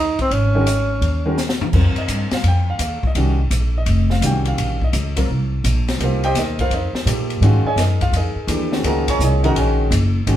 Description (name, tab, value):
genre	modal jazz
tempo	169 BPM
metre	4/4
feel	swing 66% on 8ths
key	F phrygian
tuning	A4 = 444 Hz
part	mellow tenor saxophone	melody	0.0-1.4 s	C4 to Eb4	-20 LUFS	right 2 dB	none
part	upright bass	bass	0.0-10.4 s	F1 to Bb2	-18 LUFS	equal	none
part	open jazz drum kit	drums	0.2-10.4 s	crash cymbal, hi-hat, kick drum, ride cymbal, snare drum, toms	-24 LUFS	left 1 dB	none
part	clear concert grand piano	accompaniment	0.5-10.4 s	Eb3 to Db6	-22 LUFS	equal	none
room	moderate studio reverb, RT60 0.8 s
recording	band playing live in one room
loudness	-16 LUFS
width	side -12 dB against mid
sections	0.0-1.7 A section; 1.7-10.4 B section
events	drum fill 1.4-1.7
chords	0.0 Absus4; 1.7 F9sus4; 7.4 Ab9sus4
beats	| 0.31 0.66 1.02 1.38 | 1.73 2.09 2.44 2.80 | 3.15 3.51 3.86 4.22 | 4.58 4.93 5.29 5.64 | 6.00 6.35 6.71 7.07 | 7.42 7.78 8.13 8.49 | 8.85 9.20 9.56 9.91 | 10.27